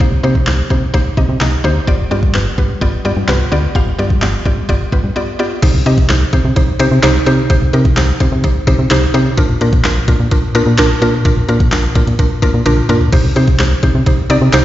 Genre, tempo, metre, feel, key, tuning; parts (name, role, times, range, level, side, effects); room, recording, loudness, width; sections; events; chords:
dance-pop; 128 BPM; 4/4; straight; C minor; A4 = 442 Hz
mallet-like synth pluck; accompaniment; 0.0-14.6 s; Bb3 to F5; -17 LUFS; equal; chorus, sidechain pumping
solid FM bass; bass; 0.0-14.6 s; G1 to C3; -14 LUFS; equal; sidechain pumping
smooth R&B drum kit; drums; 0.0-14.6 s; crash cymbal, handclaps, hi-hat, kick drum, snare drum, toms; -15 LUFS; equal
light reverb; played on a big sound system in a bare room, stone room reverb, nothing above 7.6 kHz; -11 LUFS; side -14 dB against mid
0.0-5.6 A section; 5.6-14.6 B section
break 5.2-5.6; drum fill 12.7-13.1
0.0 Cm7; 1.9 G7; 5.6 Cm; 9.4 Bb; 13.1 Cm